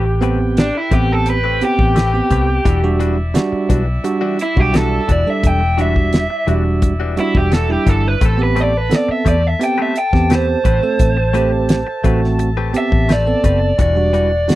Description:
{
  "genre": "straight-eighth soul blues",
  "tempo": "86 BPM",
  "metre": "4/4",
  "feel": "straight",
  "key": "unclear",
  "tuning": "A4 = 439 Hz",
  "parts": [
    { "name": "raw garage guitar", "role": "melody", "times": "0.0-14.6 s", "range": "D4 to G5", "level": "-18 LUFS", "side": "right 1 dB", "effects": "overdrive" },
    { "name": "clear horn section", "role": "sustained chords", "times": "0.0-14.6 s", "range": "G3 to A5", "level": "-29 LUFS", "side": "equal", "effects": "none" },
    { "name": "direct-recorded clean electric guitar", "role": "stabs", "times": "0.0-14.4 s", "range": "E3 to B4", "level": "-24 LUFS", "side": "left 7 dB", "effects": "phaser" },
    { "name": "vintage muted fingered electric bass", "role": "bass", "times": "0.0-14.5 s", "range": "E1 to E2", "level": "-17 LUFS", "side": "left 1 dB", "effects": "none" },
    { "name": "bell-like tine electric piano", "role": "accompaniment", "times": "0.2-14.6 s", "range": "G3 to A4", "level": "-19 LUFS", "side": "right 4 dB", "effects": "none" },
    { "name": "damped 70s drum kit", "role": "drums", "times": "0.2-14.6 s", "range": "hi-hat, kick drum, snare drum", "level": "-16 LUFS", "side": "equal", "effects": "none" }
  ],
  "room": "little or no reverb",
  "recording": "dry, close 1970s-style studio recording",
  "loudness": "-13 LUFS",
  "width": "side -16 dB against mid",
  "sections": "0.0-14.6 A section",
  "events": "overdriven electric guitar solo 0.0-14.6",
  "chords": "0.0 Am9; 2.7 Em9; 8.2 Am9; 13.8 Em9",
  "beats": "0.57 1.27 1.96 | 2.66 3.35 4.05 4.74 | 5.44 6.13 6.83 7.52 | 8.22 8.91 9.61 10.30 | 11.00 11.69 12.39 13.09 | 13.79 14.48"
}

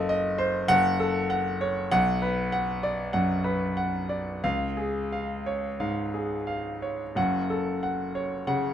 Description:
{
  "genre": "classical, romantic character piece for solo piano",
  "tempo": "86-100 BPM",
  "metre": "4/4",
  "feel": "rubato",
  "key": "F# minor",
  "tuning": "A4 = 439 Hz",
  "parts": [
    { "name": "bright concert grand piano", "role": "solo", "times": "0.0-8.7 s", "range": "F#1 to F#5", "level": "-25 LUFS", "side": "equal", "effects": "none" }
  ],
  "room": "light reverb",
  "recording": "close, detailed microphones",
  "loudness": "-25 LUFS",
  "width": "side -10 dB against mid",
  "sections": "0.0-8.7 A section",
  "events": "none",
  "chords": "0.0 F#dim7; 0.7 F#m; 1.9 Bm; 4.4 C#; 7.2 F#m",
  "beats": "0.08 0.69 1.30 | 1.90 2.52 3.13 3.76 | 4.43 5.13 5.81 6.49 | 7.17 7.83 8.46"
}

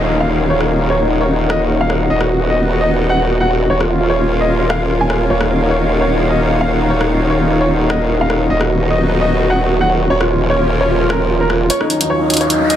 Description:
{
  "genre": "heavy wobble dubstep",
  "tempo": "150 BPM",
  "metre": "4/4",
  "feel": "swing 54% on 16ths, half-time",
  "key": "Eb minor",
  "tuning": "A4 = 439 Hz",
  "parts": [
    { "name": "warm grand piano", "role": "melody", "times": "0.0-12.8 s", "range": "Eb4 to Ab5", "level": "-17 LUFS", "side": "equal", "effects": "vintage 12-bit sampler grit, ping-pong delay" },
    { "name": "lush unison pad", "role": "sustained chords", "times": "0.0-12.8 s", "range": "Eb2 to Gb4", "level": "-19 LUFS", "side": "equal", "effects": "chorus" },
    { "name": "formant-sweep wobble bass", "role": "bass", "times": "0.0-11.7 s", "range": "Eb1", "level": "-16 LUFS", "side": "equal", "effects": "chorus, overdrive" },
    { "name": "downlifter and riser", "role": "sound effects", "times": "0.0-2.1, 12.2-12.8 s", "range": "none", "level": "-26 LUFS", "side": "equal", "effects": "none" },
    { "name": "dubstep drum kit", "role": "drums", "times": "0.6-12.8 s", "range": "hi-hat, rim click", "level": "-21 LUFS", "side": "equal", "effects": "overdrive" }
  ],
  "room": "moderate lush hall reverb, RT60 2.2 s",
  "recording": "heavily compressed radio sound, multiband compression",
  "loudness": "-12 LUFS",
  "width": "side -10 dB against mid",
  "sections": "0.0-11.7 A section; 11.7-12.8 B section",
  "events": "build-up 11.7-12.8; riser 12.2-12.8",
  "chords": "0.0 Ebm7; 2.1 B/D#; 3.7 Bbm/Eb; 5.3 Ebm7; 8.5 B/D#; 10.1 Bbm/Eb; 11.7 Ebm7",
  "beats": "0.10 | 0.50 0.90 1.30 1.70 | 2.10 2.50 2.90 3.30 | 3.70 4.10 4.50 4.90 | 5.30 5.70 6.10 6.50 | 6.90 7.30 7.70 8.10 | 8.50 8.90 9.30 9.70 | 10.10 10.50 10.90 11.30 | 11.70 12.10 12.50"
}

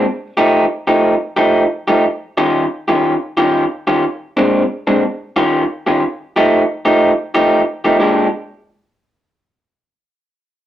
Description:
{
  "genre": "blues",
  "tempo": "121 BPM",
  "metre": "4/4",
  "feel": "swing 68% on 8ths",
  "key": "unclear",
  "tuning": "A4 = 440 Hz",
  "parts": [
    { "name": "electric guitar through a small old amp", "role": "solo", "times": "0.0-8.3 s", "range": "Bb2 to G4", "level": "-12 LUFS", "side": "equal", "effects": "none" }
  ],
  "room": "moderate studio reverb, RT60 0.7 s",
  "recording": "rough rehearsal-room recording",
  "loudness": "-13 LUFS",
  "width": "side -12 dB against mid",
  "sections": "0.0-8.0 A section; 8.0-10.0 B section",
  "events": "none",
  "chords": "0.0 F9; 2.0 Eb9; 4.0 Bb9; 5.0 Eb9; 6.0 F9; 8.0 Bb6",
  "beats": "| 0.05 0.55 1.04 1.54 | 2.04 2.54 3.04 3.53 | 4.03 4.53 5.02 5.52 | 6.02 6.51 7.01 7.51 | 8.00"
}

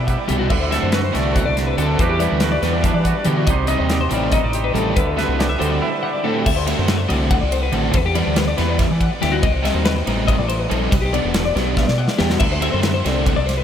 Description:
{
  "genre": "math rock and midwest emo",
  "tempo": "282 BPM (eighths)",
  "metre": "7/8",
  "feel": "straight",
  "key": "unclear",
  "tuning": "A4 = 444 Hz",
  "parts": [
    { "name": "twangy electric guitar", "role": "accompaniment", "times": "0.0-7.9 s", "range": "A2 to Eb5", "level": "-25 LUFS", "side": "right 6 dB", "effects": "none" },
    { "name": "twelve-string electric guitar", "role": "arpeggios", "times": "0.0-13.6 s", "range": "F#4 to F#5", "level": "-22 LUFS", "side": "left 5 dB", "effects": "lush chorus, tape echo" },
    { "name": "growling fingered electric bass", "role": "bass", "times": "0.0-13.6 s", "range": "E1 to E3", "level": "-21 LUFS", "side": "equal", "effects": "overdrive" },
    { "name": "modern studio drum kit", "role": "drums", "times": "0.1-13.6 s", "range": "crash cymbal, hi-hat, kick drum, ride cymbal, snare drum", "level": "-22 LUFS", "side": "equal", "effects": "none" },
    { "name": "crunchy overdriven guitar", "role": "riff", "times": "0.3-13.3 s", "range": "B2 to G4", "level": "-23 LUFS", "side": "right 1 dB", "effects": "analog chorus" }
  ],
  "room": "moderate huge ambient reverb, RT60 7.2 s",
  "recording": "dreamy mix soaked in reverb",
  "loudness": "-16 LUFS",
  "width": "side -9 dB against mid",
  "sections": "0.0-6.5 A section; 6.5-13.6 B section",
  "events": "drum fill 11.8-12.4",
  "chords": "0.0 G6; 0.5 D9; 2.0 Em9; 3.5 Cmadd9; 5.0 D9sus4; 6.5 D9; 7.9 Em9; 9.4 Cmadd9; 10.9 G6; 12.4 D9",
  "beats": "0.08 0.29 | 0.51 0.72 0.93 1.15 1.36 1.57 1.78 | 2.00 2.21 2.42 2.63 2.85 3.06 3.27 | 3.48 3.70 3.91 4.12 4.33 4.55 4.76 | 4.97 5.18 5.39 5.61 5.82 6.03 6.25 | 6.46 6.67 6.88 7.09 7.31 7.52 7.73 | 7.95 8.16 8.37 8.58 8.80 9.01 9.22 | 9.44 9.65 9.86 10.07 10.29 10.50 10.71 | 10.93 11.14 11.35 11.57 11.78 11.99 12.21 | 12.42 12.63 12.85 13.06 13.27 13.49"
}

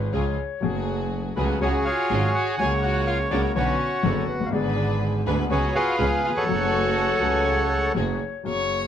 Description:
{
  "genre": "tango",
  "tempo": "122 BPM",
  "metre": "4/4",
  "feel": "rubato",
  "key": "F# harmonic minor",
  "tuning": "A4 = 440 Hz",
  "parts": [
    { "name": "dark clarinet", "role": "second line", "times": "0.0-8.4 s", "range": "A4 to E#5", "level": "-33 LUFS", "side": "left 7 dB", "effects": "none" },
    { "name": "warm grand piano", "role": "accompaniment", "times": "0.0-8.9 s", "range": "D1 to A4", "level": "-27 LUFS", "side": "left 3 dB", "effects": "none" },
    { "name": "warm studio string section", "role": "stabs", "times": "0.0-8.2 s", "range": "A3 to G#5", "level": "-34 LUFS", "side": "right 1 dB", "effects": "none" },
    { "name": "clear double bass", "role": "bass", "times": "0.0-8.9 s", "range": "F#1 to D2", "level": "-27 LUFS", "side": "right 2 dB", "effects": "none" },
    { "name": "bandoneon", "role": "melody", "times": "1.4-7.9 s", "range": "F#4 to G#5", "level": "-24 LUFS", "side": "right 1 dB", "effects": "plate reverb" },
    { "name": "rich violin", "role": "second line", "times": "1.4-8.9 s", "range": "B3 to C#5", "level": "-30 LUFS", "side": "left 4 dB", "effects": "none" }
  ],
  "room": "moderate studio ambience, RT60 0.5 s",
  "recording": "none",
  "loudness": "-21 LUFS",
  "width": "side -9 dB against mid",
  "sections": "0.0-8.5 A section",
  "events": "none",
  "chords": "0.0 C#; 0.6 F#madd9; 1.6 C#sus4; 2.6 F#/C#; 3.6 Bm; 4.5 G#dim; 5.5 C#7sus4; 6.0 C#7; 6.5 F#madd9",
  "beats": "0.13 | 0.63 1.12 1.61 2.11 | 2.60 3.08 3.56 4.04 | 4.53 5.02 5.50 5.99 | 6.48 6.97 7.46 7.96 | 8.46"
}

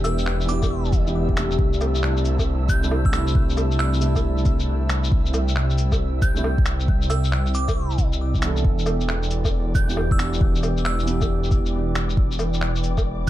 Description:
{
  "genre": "future garage",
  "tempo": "136 BPM",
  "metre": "4/4",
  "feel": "swing 64% on 16ths",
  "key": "E minor",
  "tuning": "A4 = 440 Hz",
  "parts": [
    { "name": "glassy synth bell", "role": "melody", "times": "0.0-13.3 s", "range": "D6 to G6", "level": "-33 LUFS", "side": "right 2 dB", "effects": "chorus, ping-pong delay" },
    { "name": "felt-muted upright piano", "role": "accompaniment", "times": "0.0-13.3 s", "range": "C3 to A4", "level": "-28 LUFS", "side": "right 1 dB", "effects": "sidechain pumping, ping-pong delay" },
    { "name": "warbly tape-like pad", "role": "sustained chords", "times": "0.0-13.3 s", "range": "E4 to A5", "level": "-34 LUFS", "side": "right 1 dB", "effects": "chorus, built-in reverb, sidechain pumping" },
    { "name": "swelling detuned saw bass", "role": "bass", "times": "0.0-13.3 s", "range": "E1 to C2", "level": "-23 LUFS", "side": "equal", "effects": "sidechain pumping" },
    { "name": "electronic cabasa, woodblock, shaker and finger snaps", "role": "drums", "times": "0.0-13.3 s", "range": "none", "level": "-29 LUFS", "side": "left 1 dB", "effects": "none" },
    { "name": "flickering grainy texture", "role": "texture", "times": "0.0-13.3 s", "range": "D5 to E5", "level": "-38 LUFS", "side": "right 2 dB", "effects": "built-in reverb" },
    { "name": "electronic kick drum", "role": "drums", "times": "0.6-13.3 s", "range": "none", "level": "-21 LUFS", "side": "equal", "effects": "overdrive" }
  ],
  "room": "light reverb, digital ambience",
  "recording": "none",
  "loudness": "-19 LUFS",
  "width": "side -14 dB against mid",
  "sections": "0.0-13.3 A section",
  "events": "none",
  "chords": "0.0 Em7; 1.6 C69; 8.6 Em7",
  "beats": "0.26 0.70 1.15 | 1.59 2.03 2.47 2.91 | 3.35 3.79 4.23 4.67 | 5.12 5.56 6.00 6.44 | 6.88 7.32 7.76 8.21 | 8.65 9.09 9.53 9.97 | 10.41 10.85 11.29 11.73 | 12.18 12.62 13.06"
}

